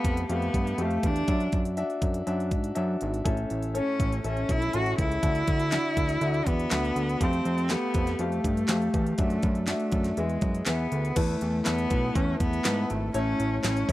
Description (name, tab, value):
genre	piano-driven pop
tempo	121 BPM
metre	4/4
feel	straight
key	unclear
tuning	A4 = 438 Hz
part	rich cello	melody	0.0-13.9 s	G#3 to F#4	-29 LUFS	equal	slapback echo
part	clear upright piano	accompaniment	0.0-13.9 s	A2 to A5	-31 LUFS	left 2 dB	none
part	fat analog bass	bass	0.0-13.9 s	E1 to G#2	-29 LUFS	equal	none
part	pop drum kit	drums	0.0-13.9 s	crash cymbal, handclaps, hi-hat, kick drum, snare drum	-29 LUFS	equal	none
room	little or no reverb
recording	dry, close 1970s-style studio recording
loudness	-24 LUFS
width	side -16 dB against mid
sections	0.0-11.2 A section; 11.2-13.9 B section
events	none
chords	0.0 Fadd9; 1.3 Dadd9/F#; 3.3 A; 5.2 Dadd9; 7.2 Fadd9; 9.2 Dadd9/F#; 10.2 E; 11.2 Esus4; 13.1 A